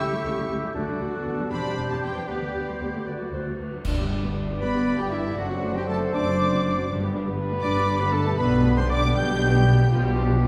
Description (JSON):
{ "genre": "classical, dramatic, fast romantic movement for symphony orchestra", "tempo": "79 BPM (dotted quarters)", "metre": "6/8", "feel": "straight", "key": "G major", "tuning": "A4 = 440 Hz", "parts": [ { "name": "warm symphonic violin section", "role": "melody", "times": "0.0-9.9 s", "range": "D5 to G6", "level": "-37 LUFS", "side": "equal", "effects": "none" }, { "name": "bright oboe", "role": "second line", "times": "0.0-9.9 s", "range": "E4 to G5", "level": "-38 LUFS", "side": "equal", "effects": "none" }, { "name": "large flute ensemble", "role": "second line", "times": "0.0-9.9 s", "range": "E5 to G6", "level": "-37 LUFS", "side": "equal", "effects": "none" }, { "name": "warm clarinet", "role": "second line", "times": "0.0-9.9 s", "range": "E4 to G5", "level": "-36 LUFS", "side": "equal", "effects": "none" }, { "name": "warm symphonic violin section", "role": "second line", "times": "0.0-9.9 s", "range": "E4 to G5", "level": "-42 LUFS", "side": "equal", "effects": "none" }, { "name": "rich symphonic viola section", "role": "accompaniment", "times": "0.0-10.5 s", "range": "F3 to G4", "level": "-35 LUFS", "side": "equal", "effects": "none" }, { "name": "warm bassoon", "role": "accompaniment", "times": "0.0-3.4 s", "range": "B3 to E4", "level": "-36 LUFS", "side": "equal", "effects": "none" }, { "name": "mellow French horn section", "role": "sustained chords", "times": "0.0-9.9 s", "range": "E3 to G4", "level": "-33 LUFS", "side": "equal", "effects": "none" }, { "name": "rich symphonic cello section", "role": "bass", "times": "0.0-10.5 s", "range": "D2 to D3", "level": "-32 LUFS", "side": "equal", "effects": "none" }, { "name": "rich symphonic double bass section", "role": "bass", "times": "0.0-10.5 s", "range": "E1 to D2", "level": "-29 LUFS", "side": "equal", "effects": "none" }, { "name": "cymbal swell, clash cymbals and concert bass drum", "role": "percussion", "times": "0.8-4.8 s", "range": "none", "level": "-36 LUFS", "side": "equal", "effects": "none" }, { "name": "warm trombone section", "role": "sustained chords", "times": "3.9-10.5 s", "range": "D3 to D4", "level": "-37 LUFS", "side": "equal", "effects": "none" }, { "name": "mellow trumpet section", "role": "stabs", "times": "3.9-10.5 s", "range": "G4 to D5", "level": "-33 LUFS", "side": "equal", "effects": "none" } ], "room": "wet scoring stage reverb, RT60 1.4 s", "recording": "heard from further back in the room", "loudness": "-24 LUFS", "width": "mono", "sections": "0.0-3.9 A section; 3.9-10.5 B section", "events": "band accent 3.9-4.4", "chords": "0.0 A7/C#; 0.8 D; 1.5 C/E; 2.3 G/D; 3.1 D; 3.9 G; 5.4 D7/F#; 6.9 G; 8.4 G/B; 9.9 G7/B" }